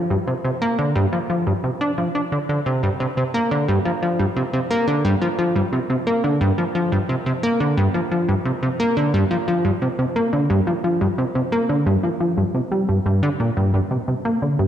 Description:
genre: ambient.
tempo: 88 BPM.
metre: 4/4.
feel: straight.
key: G minor.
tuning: A4 = 439 Hz.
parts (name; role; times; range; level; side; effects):
plucky analog bass; solo; 0.0-14.7 s; G2 to D4; -18 LUFS; equal; cassette tape, analog delay.
room: wet concert hall reverb, RT60 2.2 s.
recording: dark, warm production.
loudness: -18 LUFS.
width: side -10 dB against mid.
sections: 0.0-14.7 A section.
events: none.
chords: none.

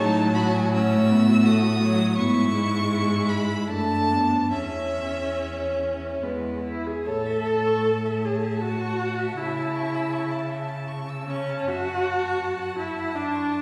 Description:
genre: classical, slow romantic movement for string quartet.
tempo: 70-84 BPM.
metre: 3/4.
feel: rubato.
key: A major.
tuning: A4 = 440 Hz.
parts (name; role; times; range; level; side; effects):
rich violin; melody; 0.0-13.6 s; E5 to E6; -33 LUFS; equal; none.
clear violin; second line; 0.0-13.6 s; B3 to E6; -34 LUFS; equal; none.
rich viola; accompaniment; 0.0-13.6 s; F#3 to A4; -28 LUFS; equal; none.
clear cello; bass; 0.0-13.6 s; E2 to C#3; -28 LUFS; equal; none.
room: wet scoring stage reverb, RT60 1.6 s.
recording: heard from further back in the room, small room ambience.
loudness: -24 LUFS.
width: mono.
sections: 0.0-7.1 A section; 7.1-13.6 B section.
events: none.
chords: 0.0 B7/A; 2.2 E/G#; 3.7 D/F#; 4.5 C#m/E; 6.2 E; 7.1 A; 9.4 A/C#; 11.7 F#m7.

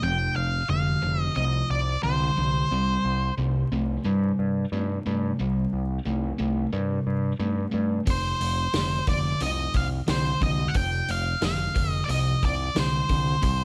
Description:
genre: blues rock power trio and southern rock.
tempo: 90 BPM.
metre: 4/4.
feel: straight.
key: unclear.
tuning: A4 = 438 Hz.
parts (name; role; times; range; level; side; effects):
octave-fuzz lead guitar; melody; 0.0-3.3, 8.1-13.6 s; C5 to G5; -30 LUFS; equal; distortion.
sludgy distorted guitar; riff; 0.0-13.6 s; F2 to A3; -30 LUFS; equal; overdrive.
growling picked electric bass; bass; 0.0-13.6 s; F1 to G2; -30 LUFS; equal; overdrive.
vintage drum kit; drums; 8.1-13.6 s; hi-hat, kick drum, snare drum; -31 LUFS; equal; none.
room: small room reverb.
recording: vinyl crackle.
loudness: -25 LUFS.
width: mono.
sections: 0.0-13.6 A section.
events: none.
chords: 0.0 F5; 2.7 C5; 8.1 F5.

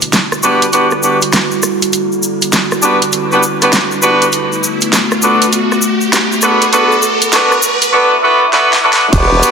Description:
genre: glitch hop.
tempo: 100 BPM.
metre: 4/4.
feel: swing 64% on 16ths.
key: unclear.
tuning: A4 = 442 Hz.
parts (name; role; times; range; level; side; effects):
warbly tape-like pad; sustained chords; 0.0-9.5 s; D3 to F#4; -18 LUFS; equal; chorus, built-in reverb, sidechain pumping.
pop drum kit; drums; 0.0-9.5 s; crash cymbal, hi-hat, rim click, snare drum; -15 LUFS; right 1 dB; high-pass filter on hats, small room ambience, high-pass filter on snare, high-pass filter on cymbals.
tube shaker; percussion; 0.0-9.5 s; none; -20 LUFS; left 2 dB; none.
riser and swell; sound effects; 0.0-9.1 s; none; -20 LUFS; right 1 dB; none.
clear horn section; stabs; 0.4-9.5 s; B3 to B4; -11 LUFS; equal; sidechain pumping, low-pass filter, tape echo.
formant-sweep wobble bass; bass; 9.1-9.4 s; E1; -12 LUFS; right 1 dB; chorus.
electronic kick drum; drums; 9.1-9.3 s; none; -16 LUFS; equal; small room ambience.
room: wet plate reverb, RT60 2.6 s.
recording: dense, heavily limited modern master, high-pass filter.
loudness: -9 LUFS.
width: side -6 dB against mid.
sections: 0.0-9.1 A section.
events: build-up 0.0-9.1; riser 0.0-7.9; swell 7.9-9.1; drum fill 8.5-9.1.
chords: 0.0 Em9; 4.3 Bm7.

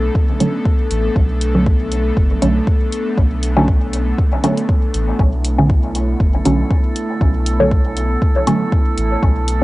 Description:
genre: dub techno.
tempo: 119 BPM.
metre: 4/4.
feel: swing 54% on 16ths.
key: B minor.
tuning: A4 = 441 Hz.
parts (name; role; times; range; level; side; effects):
airy breathy pad; sustained chords; 0.0-9.6 s; A3 to A4; -23 LUFS; equal; chorus, sidechain pumping, cassette tape.
soft dub sub bass; bass; 0.0-9.6 s; F#1 to B1; -19 LUFS; equal; sidechain pumping.
electronic kick drum; drums; 0.2-9.3 s; none; -15 LUFS; equal; overdrive, cassette tape.
filtered dub chord stab; stabs; 0.4-9.6 s; D3 to C#4; -18 LUFS; equal; phaser, sidechain pumping, cassette tape, dub echo.
electronic hi-hat; drums; 0.4-9.6 s; none; -28 LUFS; equal; cassette tape.
drifting glass-harmonics texture; texture; 5.9-9.6 s; A4; -26 LUFS; right 3 dB; chorus, built-in reverb, sidechain pumping, cassette tape.
room: light reverb.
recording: home recording on cassette, nothing above 10.5 kHz.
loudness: -14 LUFS.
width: side -18 dB against mid.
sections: 0.0-9.6 A section.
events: filter sweep on synth stab 0.0-9.6.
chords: 0.0 Bm7.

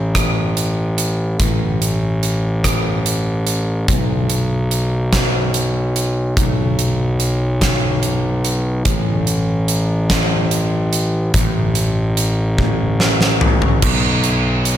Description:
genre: post-rock.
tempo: 48 BPM (dotted quarters).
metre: 6/8.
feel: straight.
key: unclear.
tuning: A4 = 440 Hz.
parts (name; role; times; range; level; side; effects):
fuzz picked electric bass; bass; 0.0-14.8 s; A1 to B1; -17 LUFS; equal; overdrive.
huge arena drum kit; drums; 0.1-14.8 s; crash cymbal, hi-hat, kick drum, rim click, snare drum, toms; -18 LUFS; equal; none.
room: little or no reverb.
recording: none.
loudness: -15 LUFS.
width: side -11 dB against mid.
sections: 0.0-13.8 A section.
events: drum fill 12.6-13.8.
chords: none.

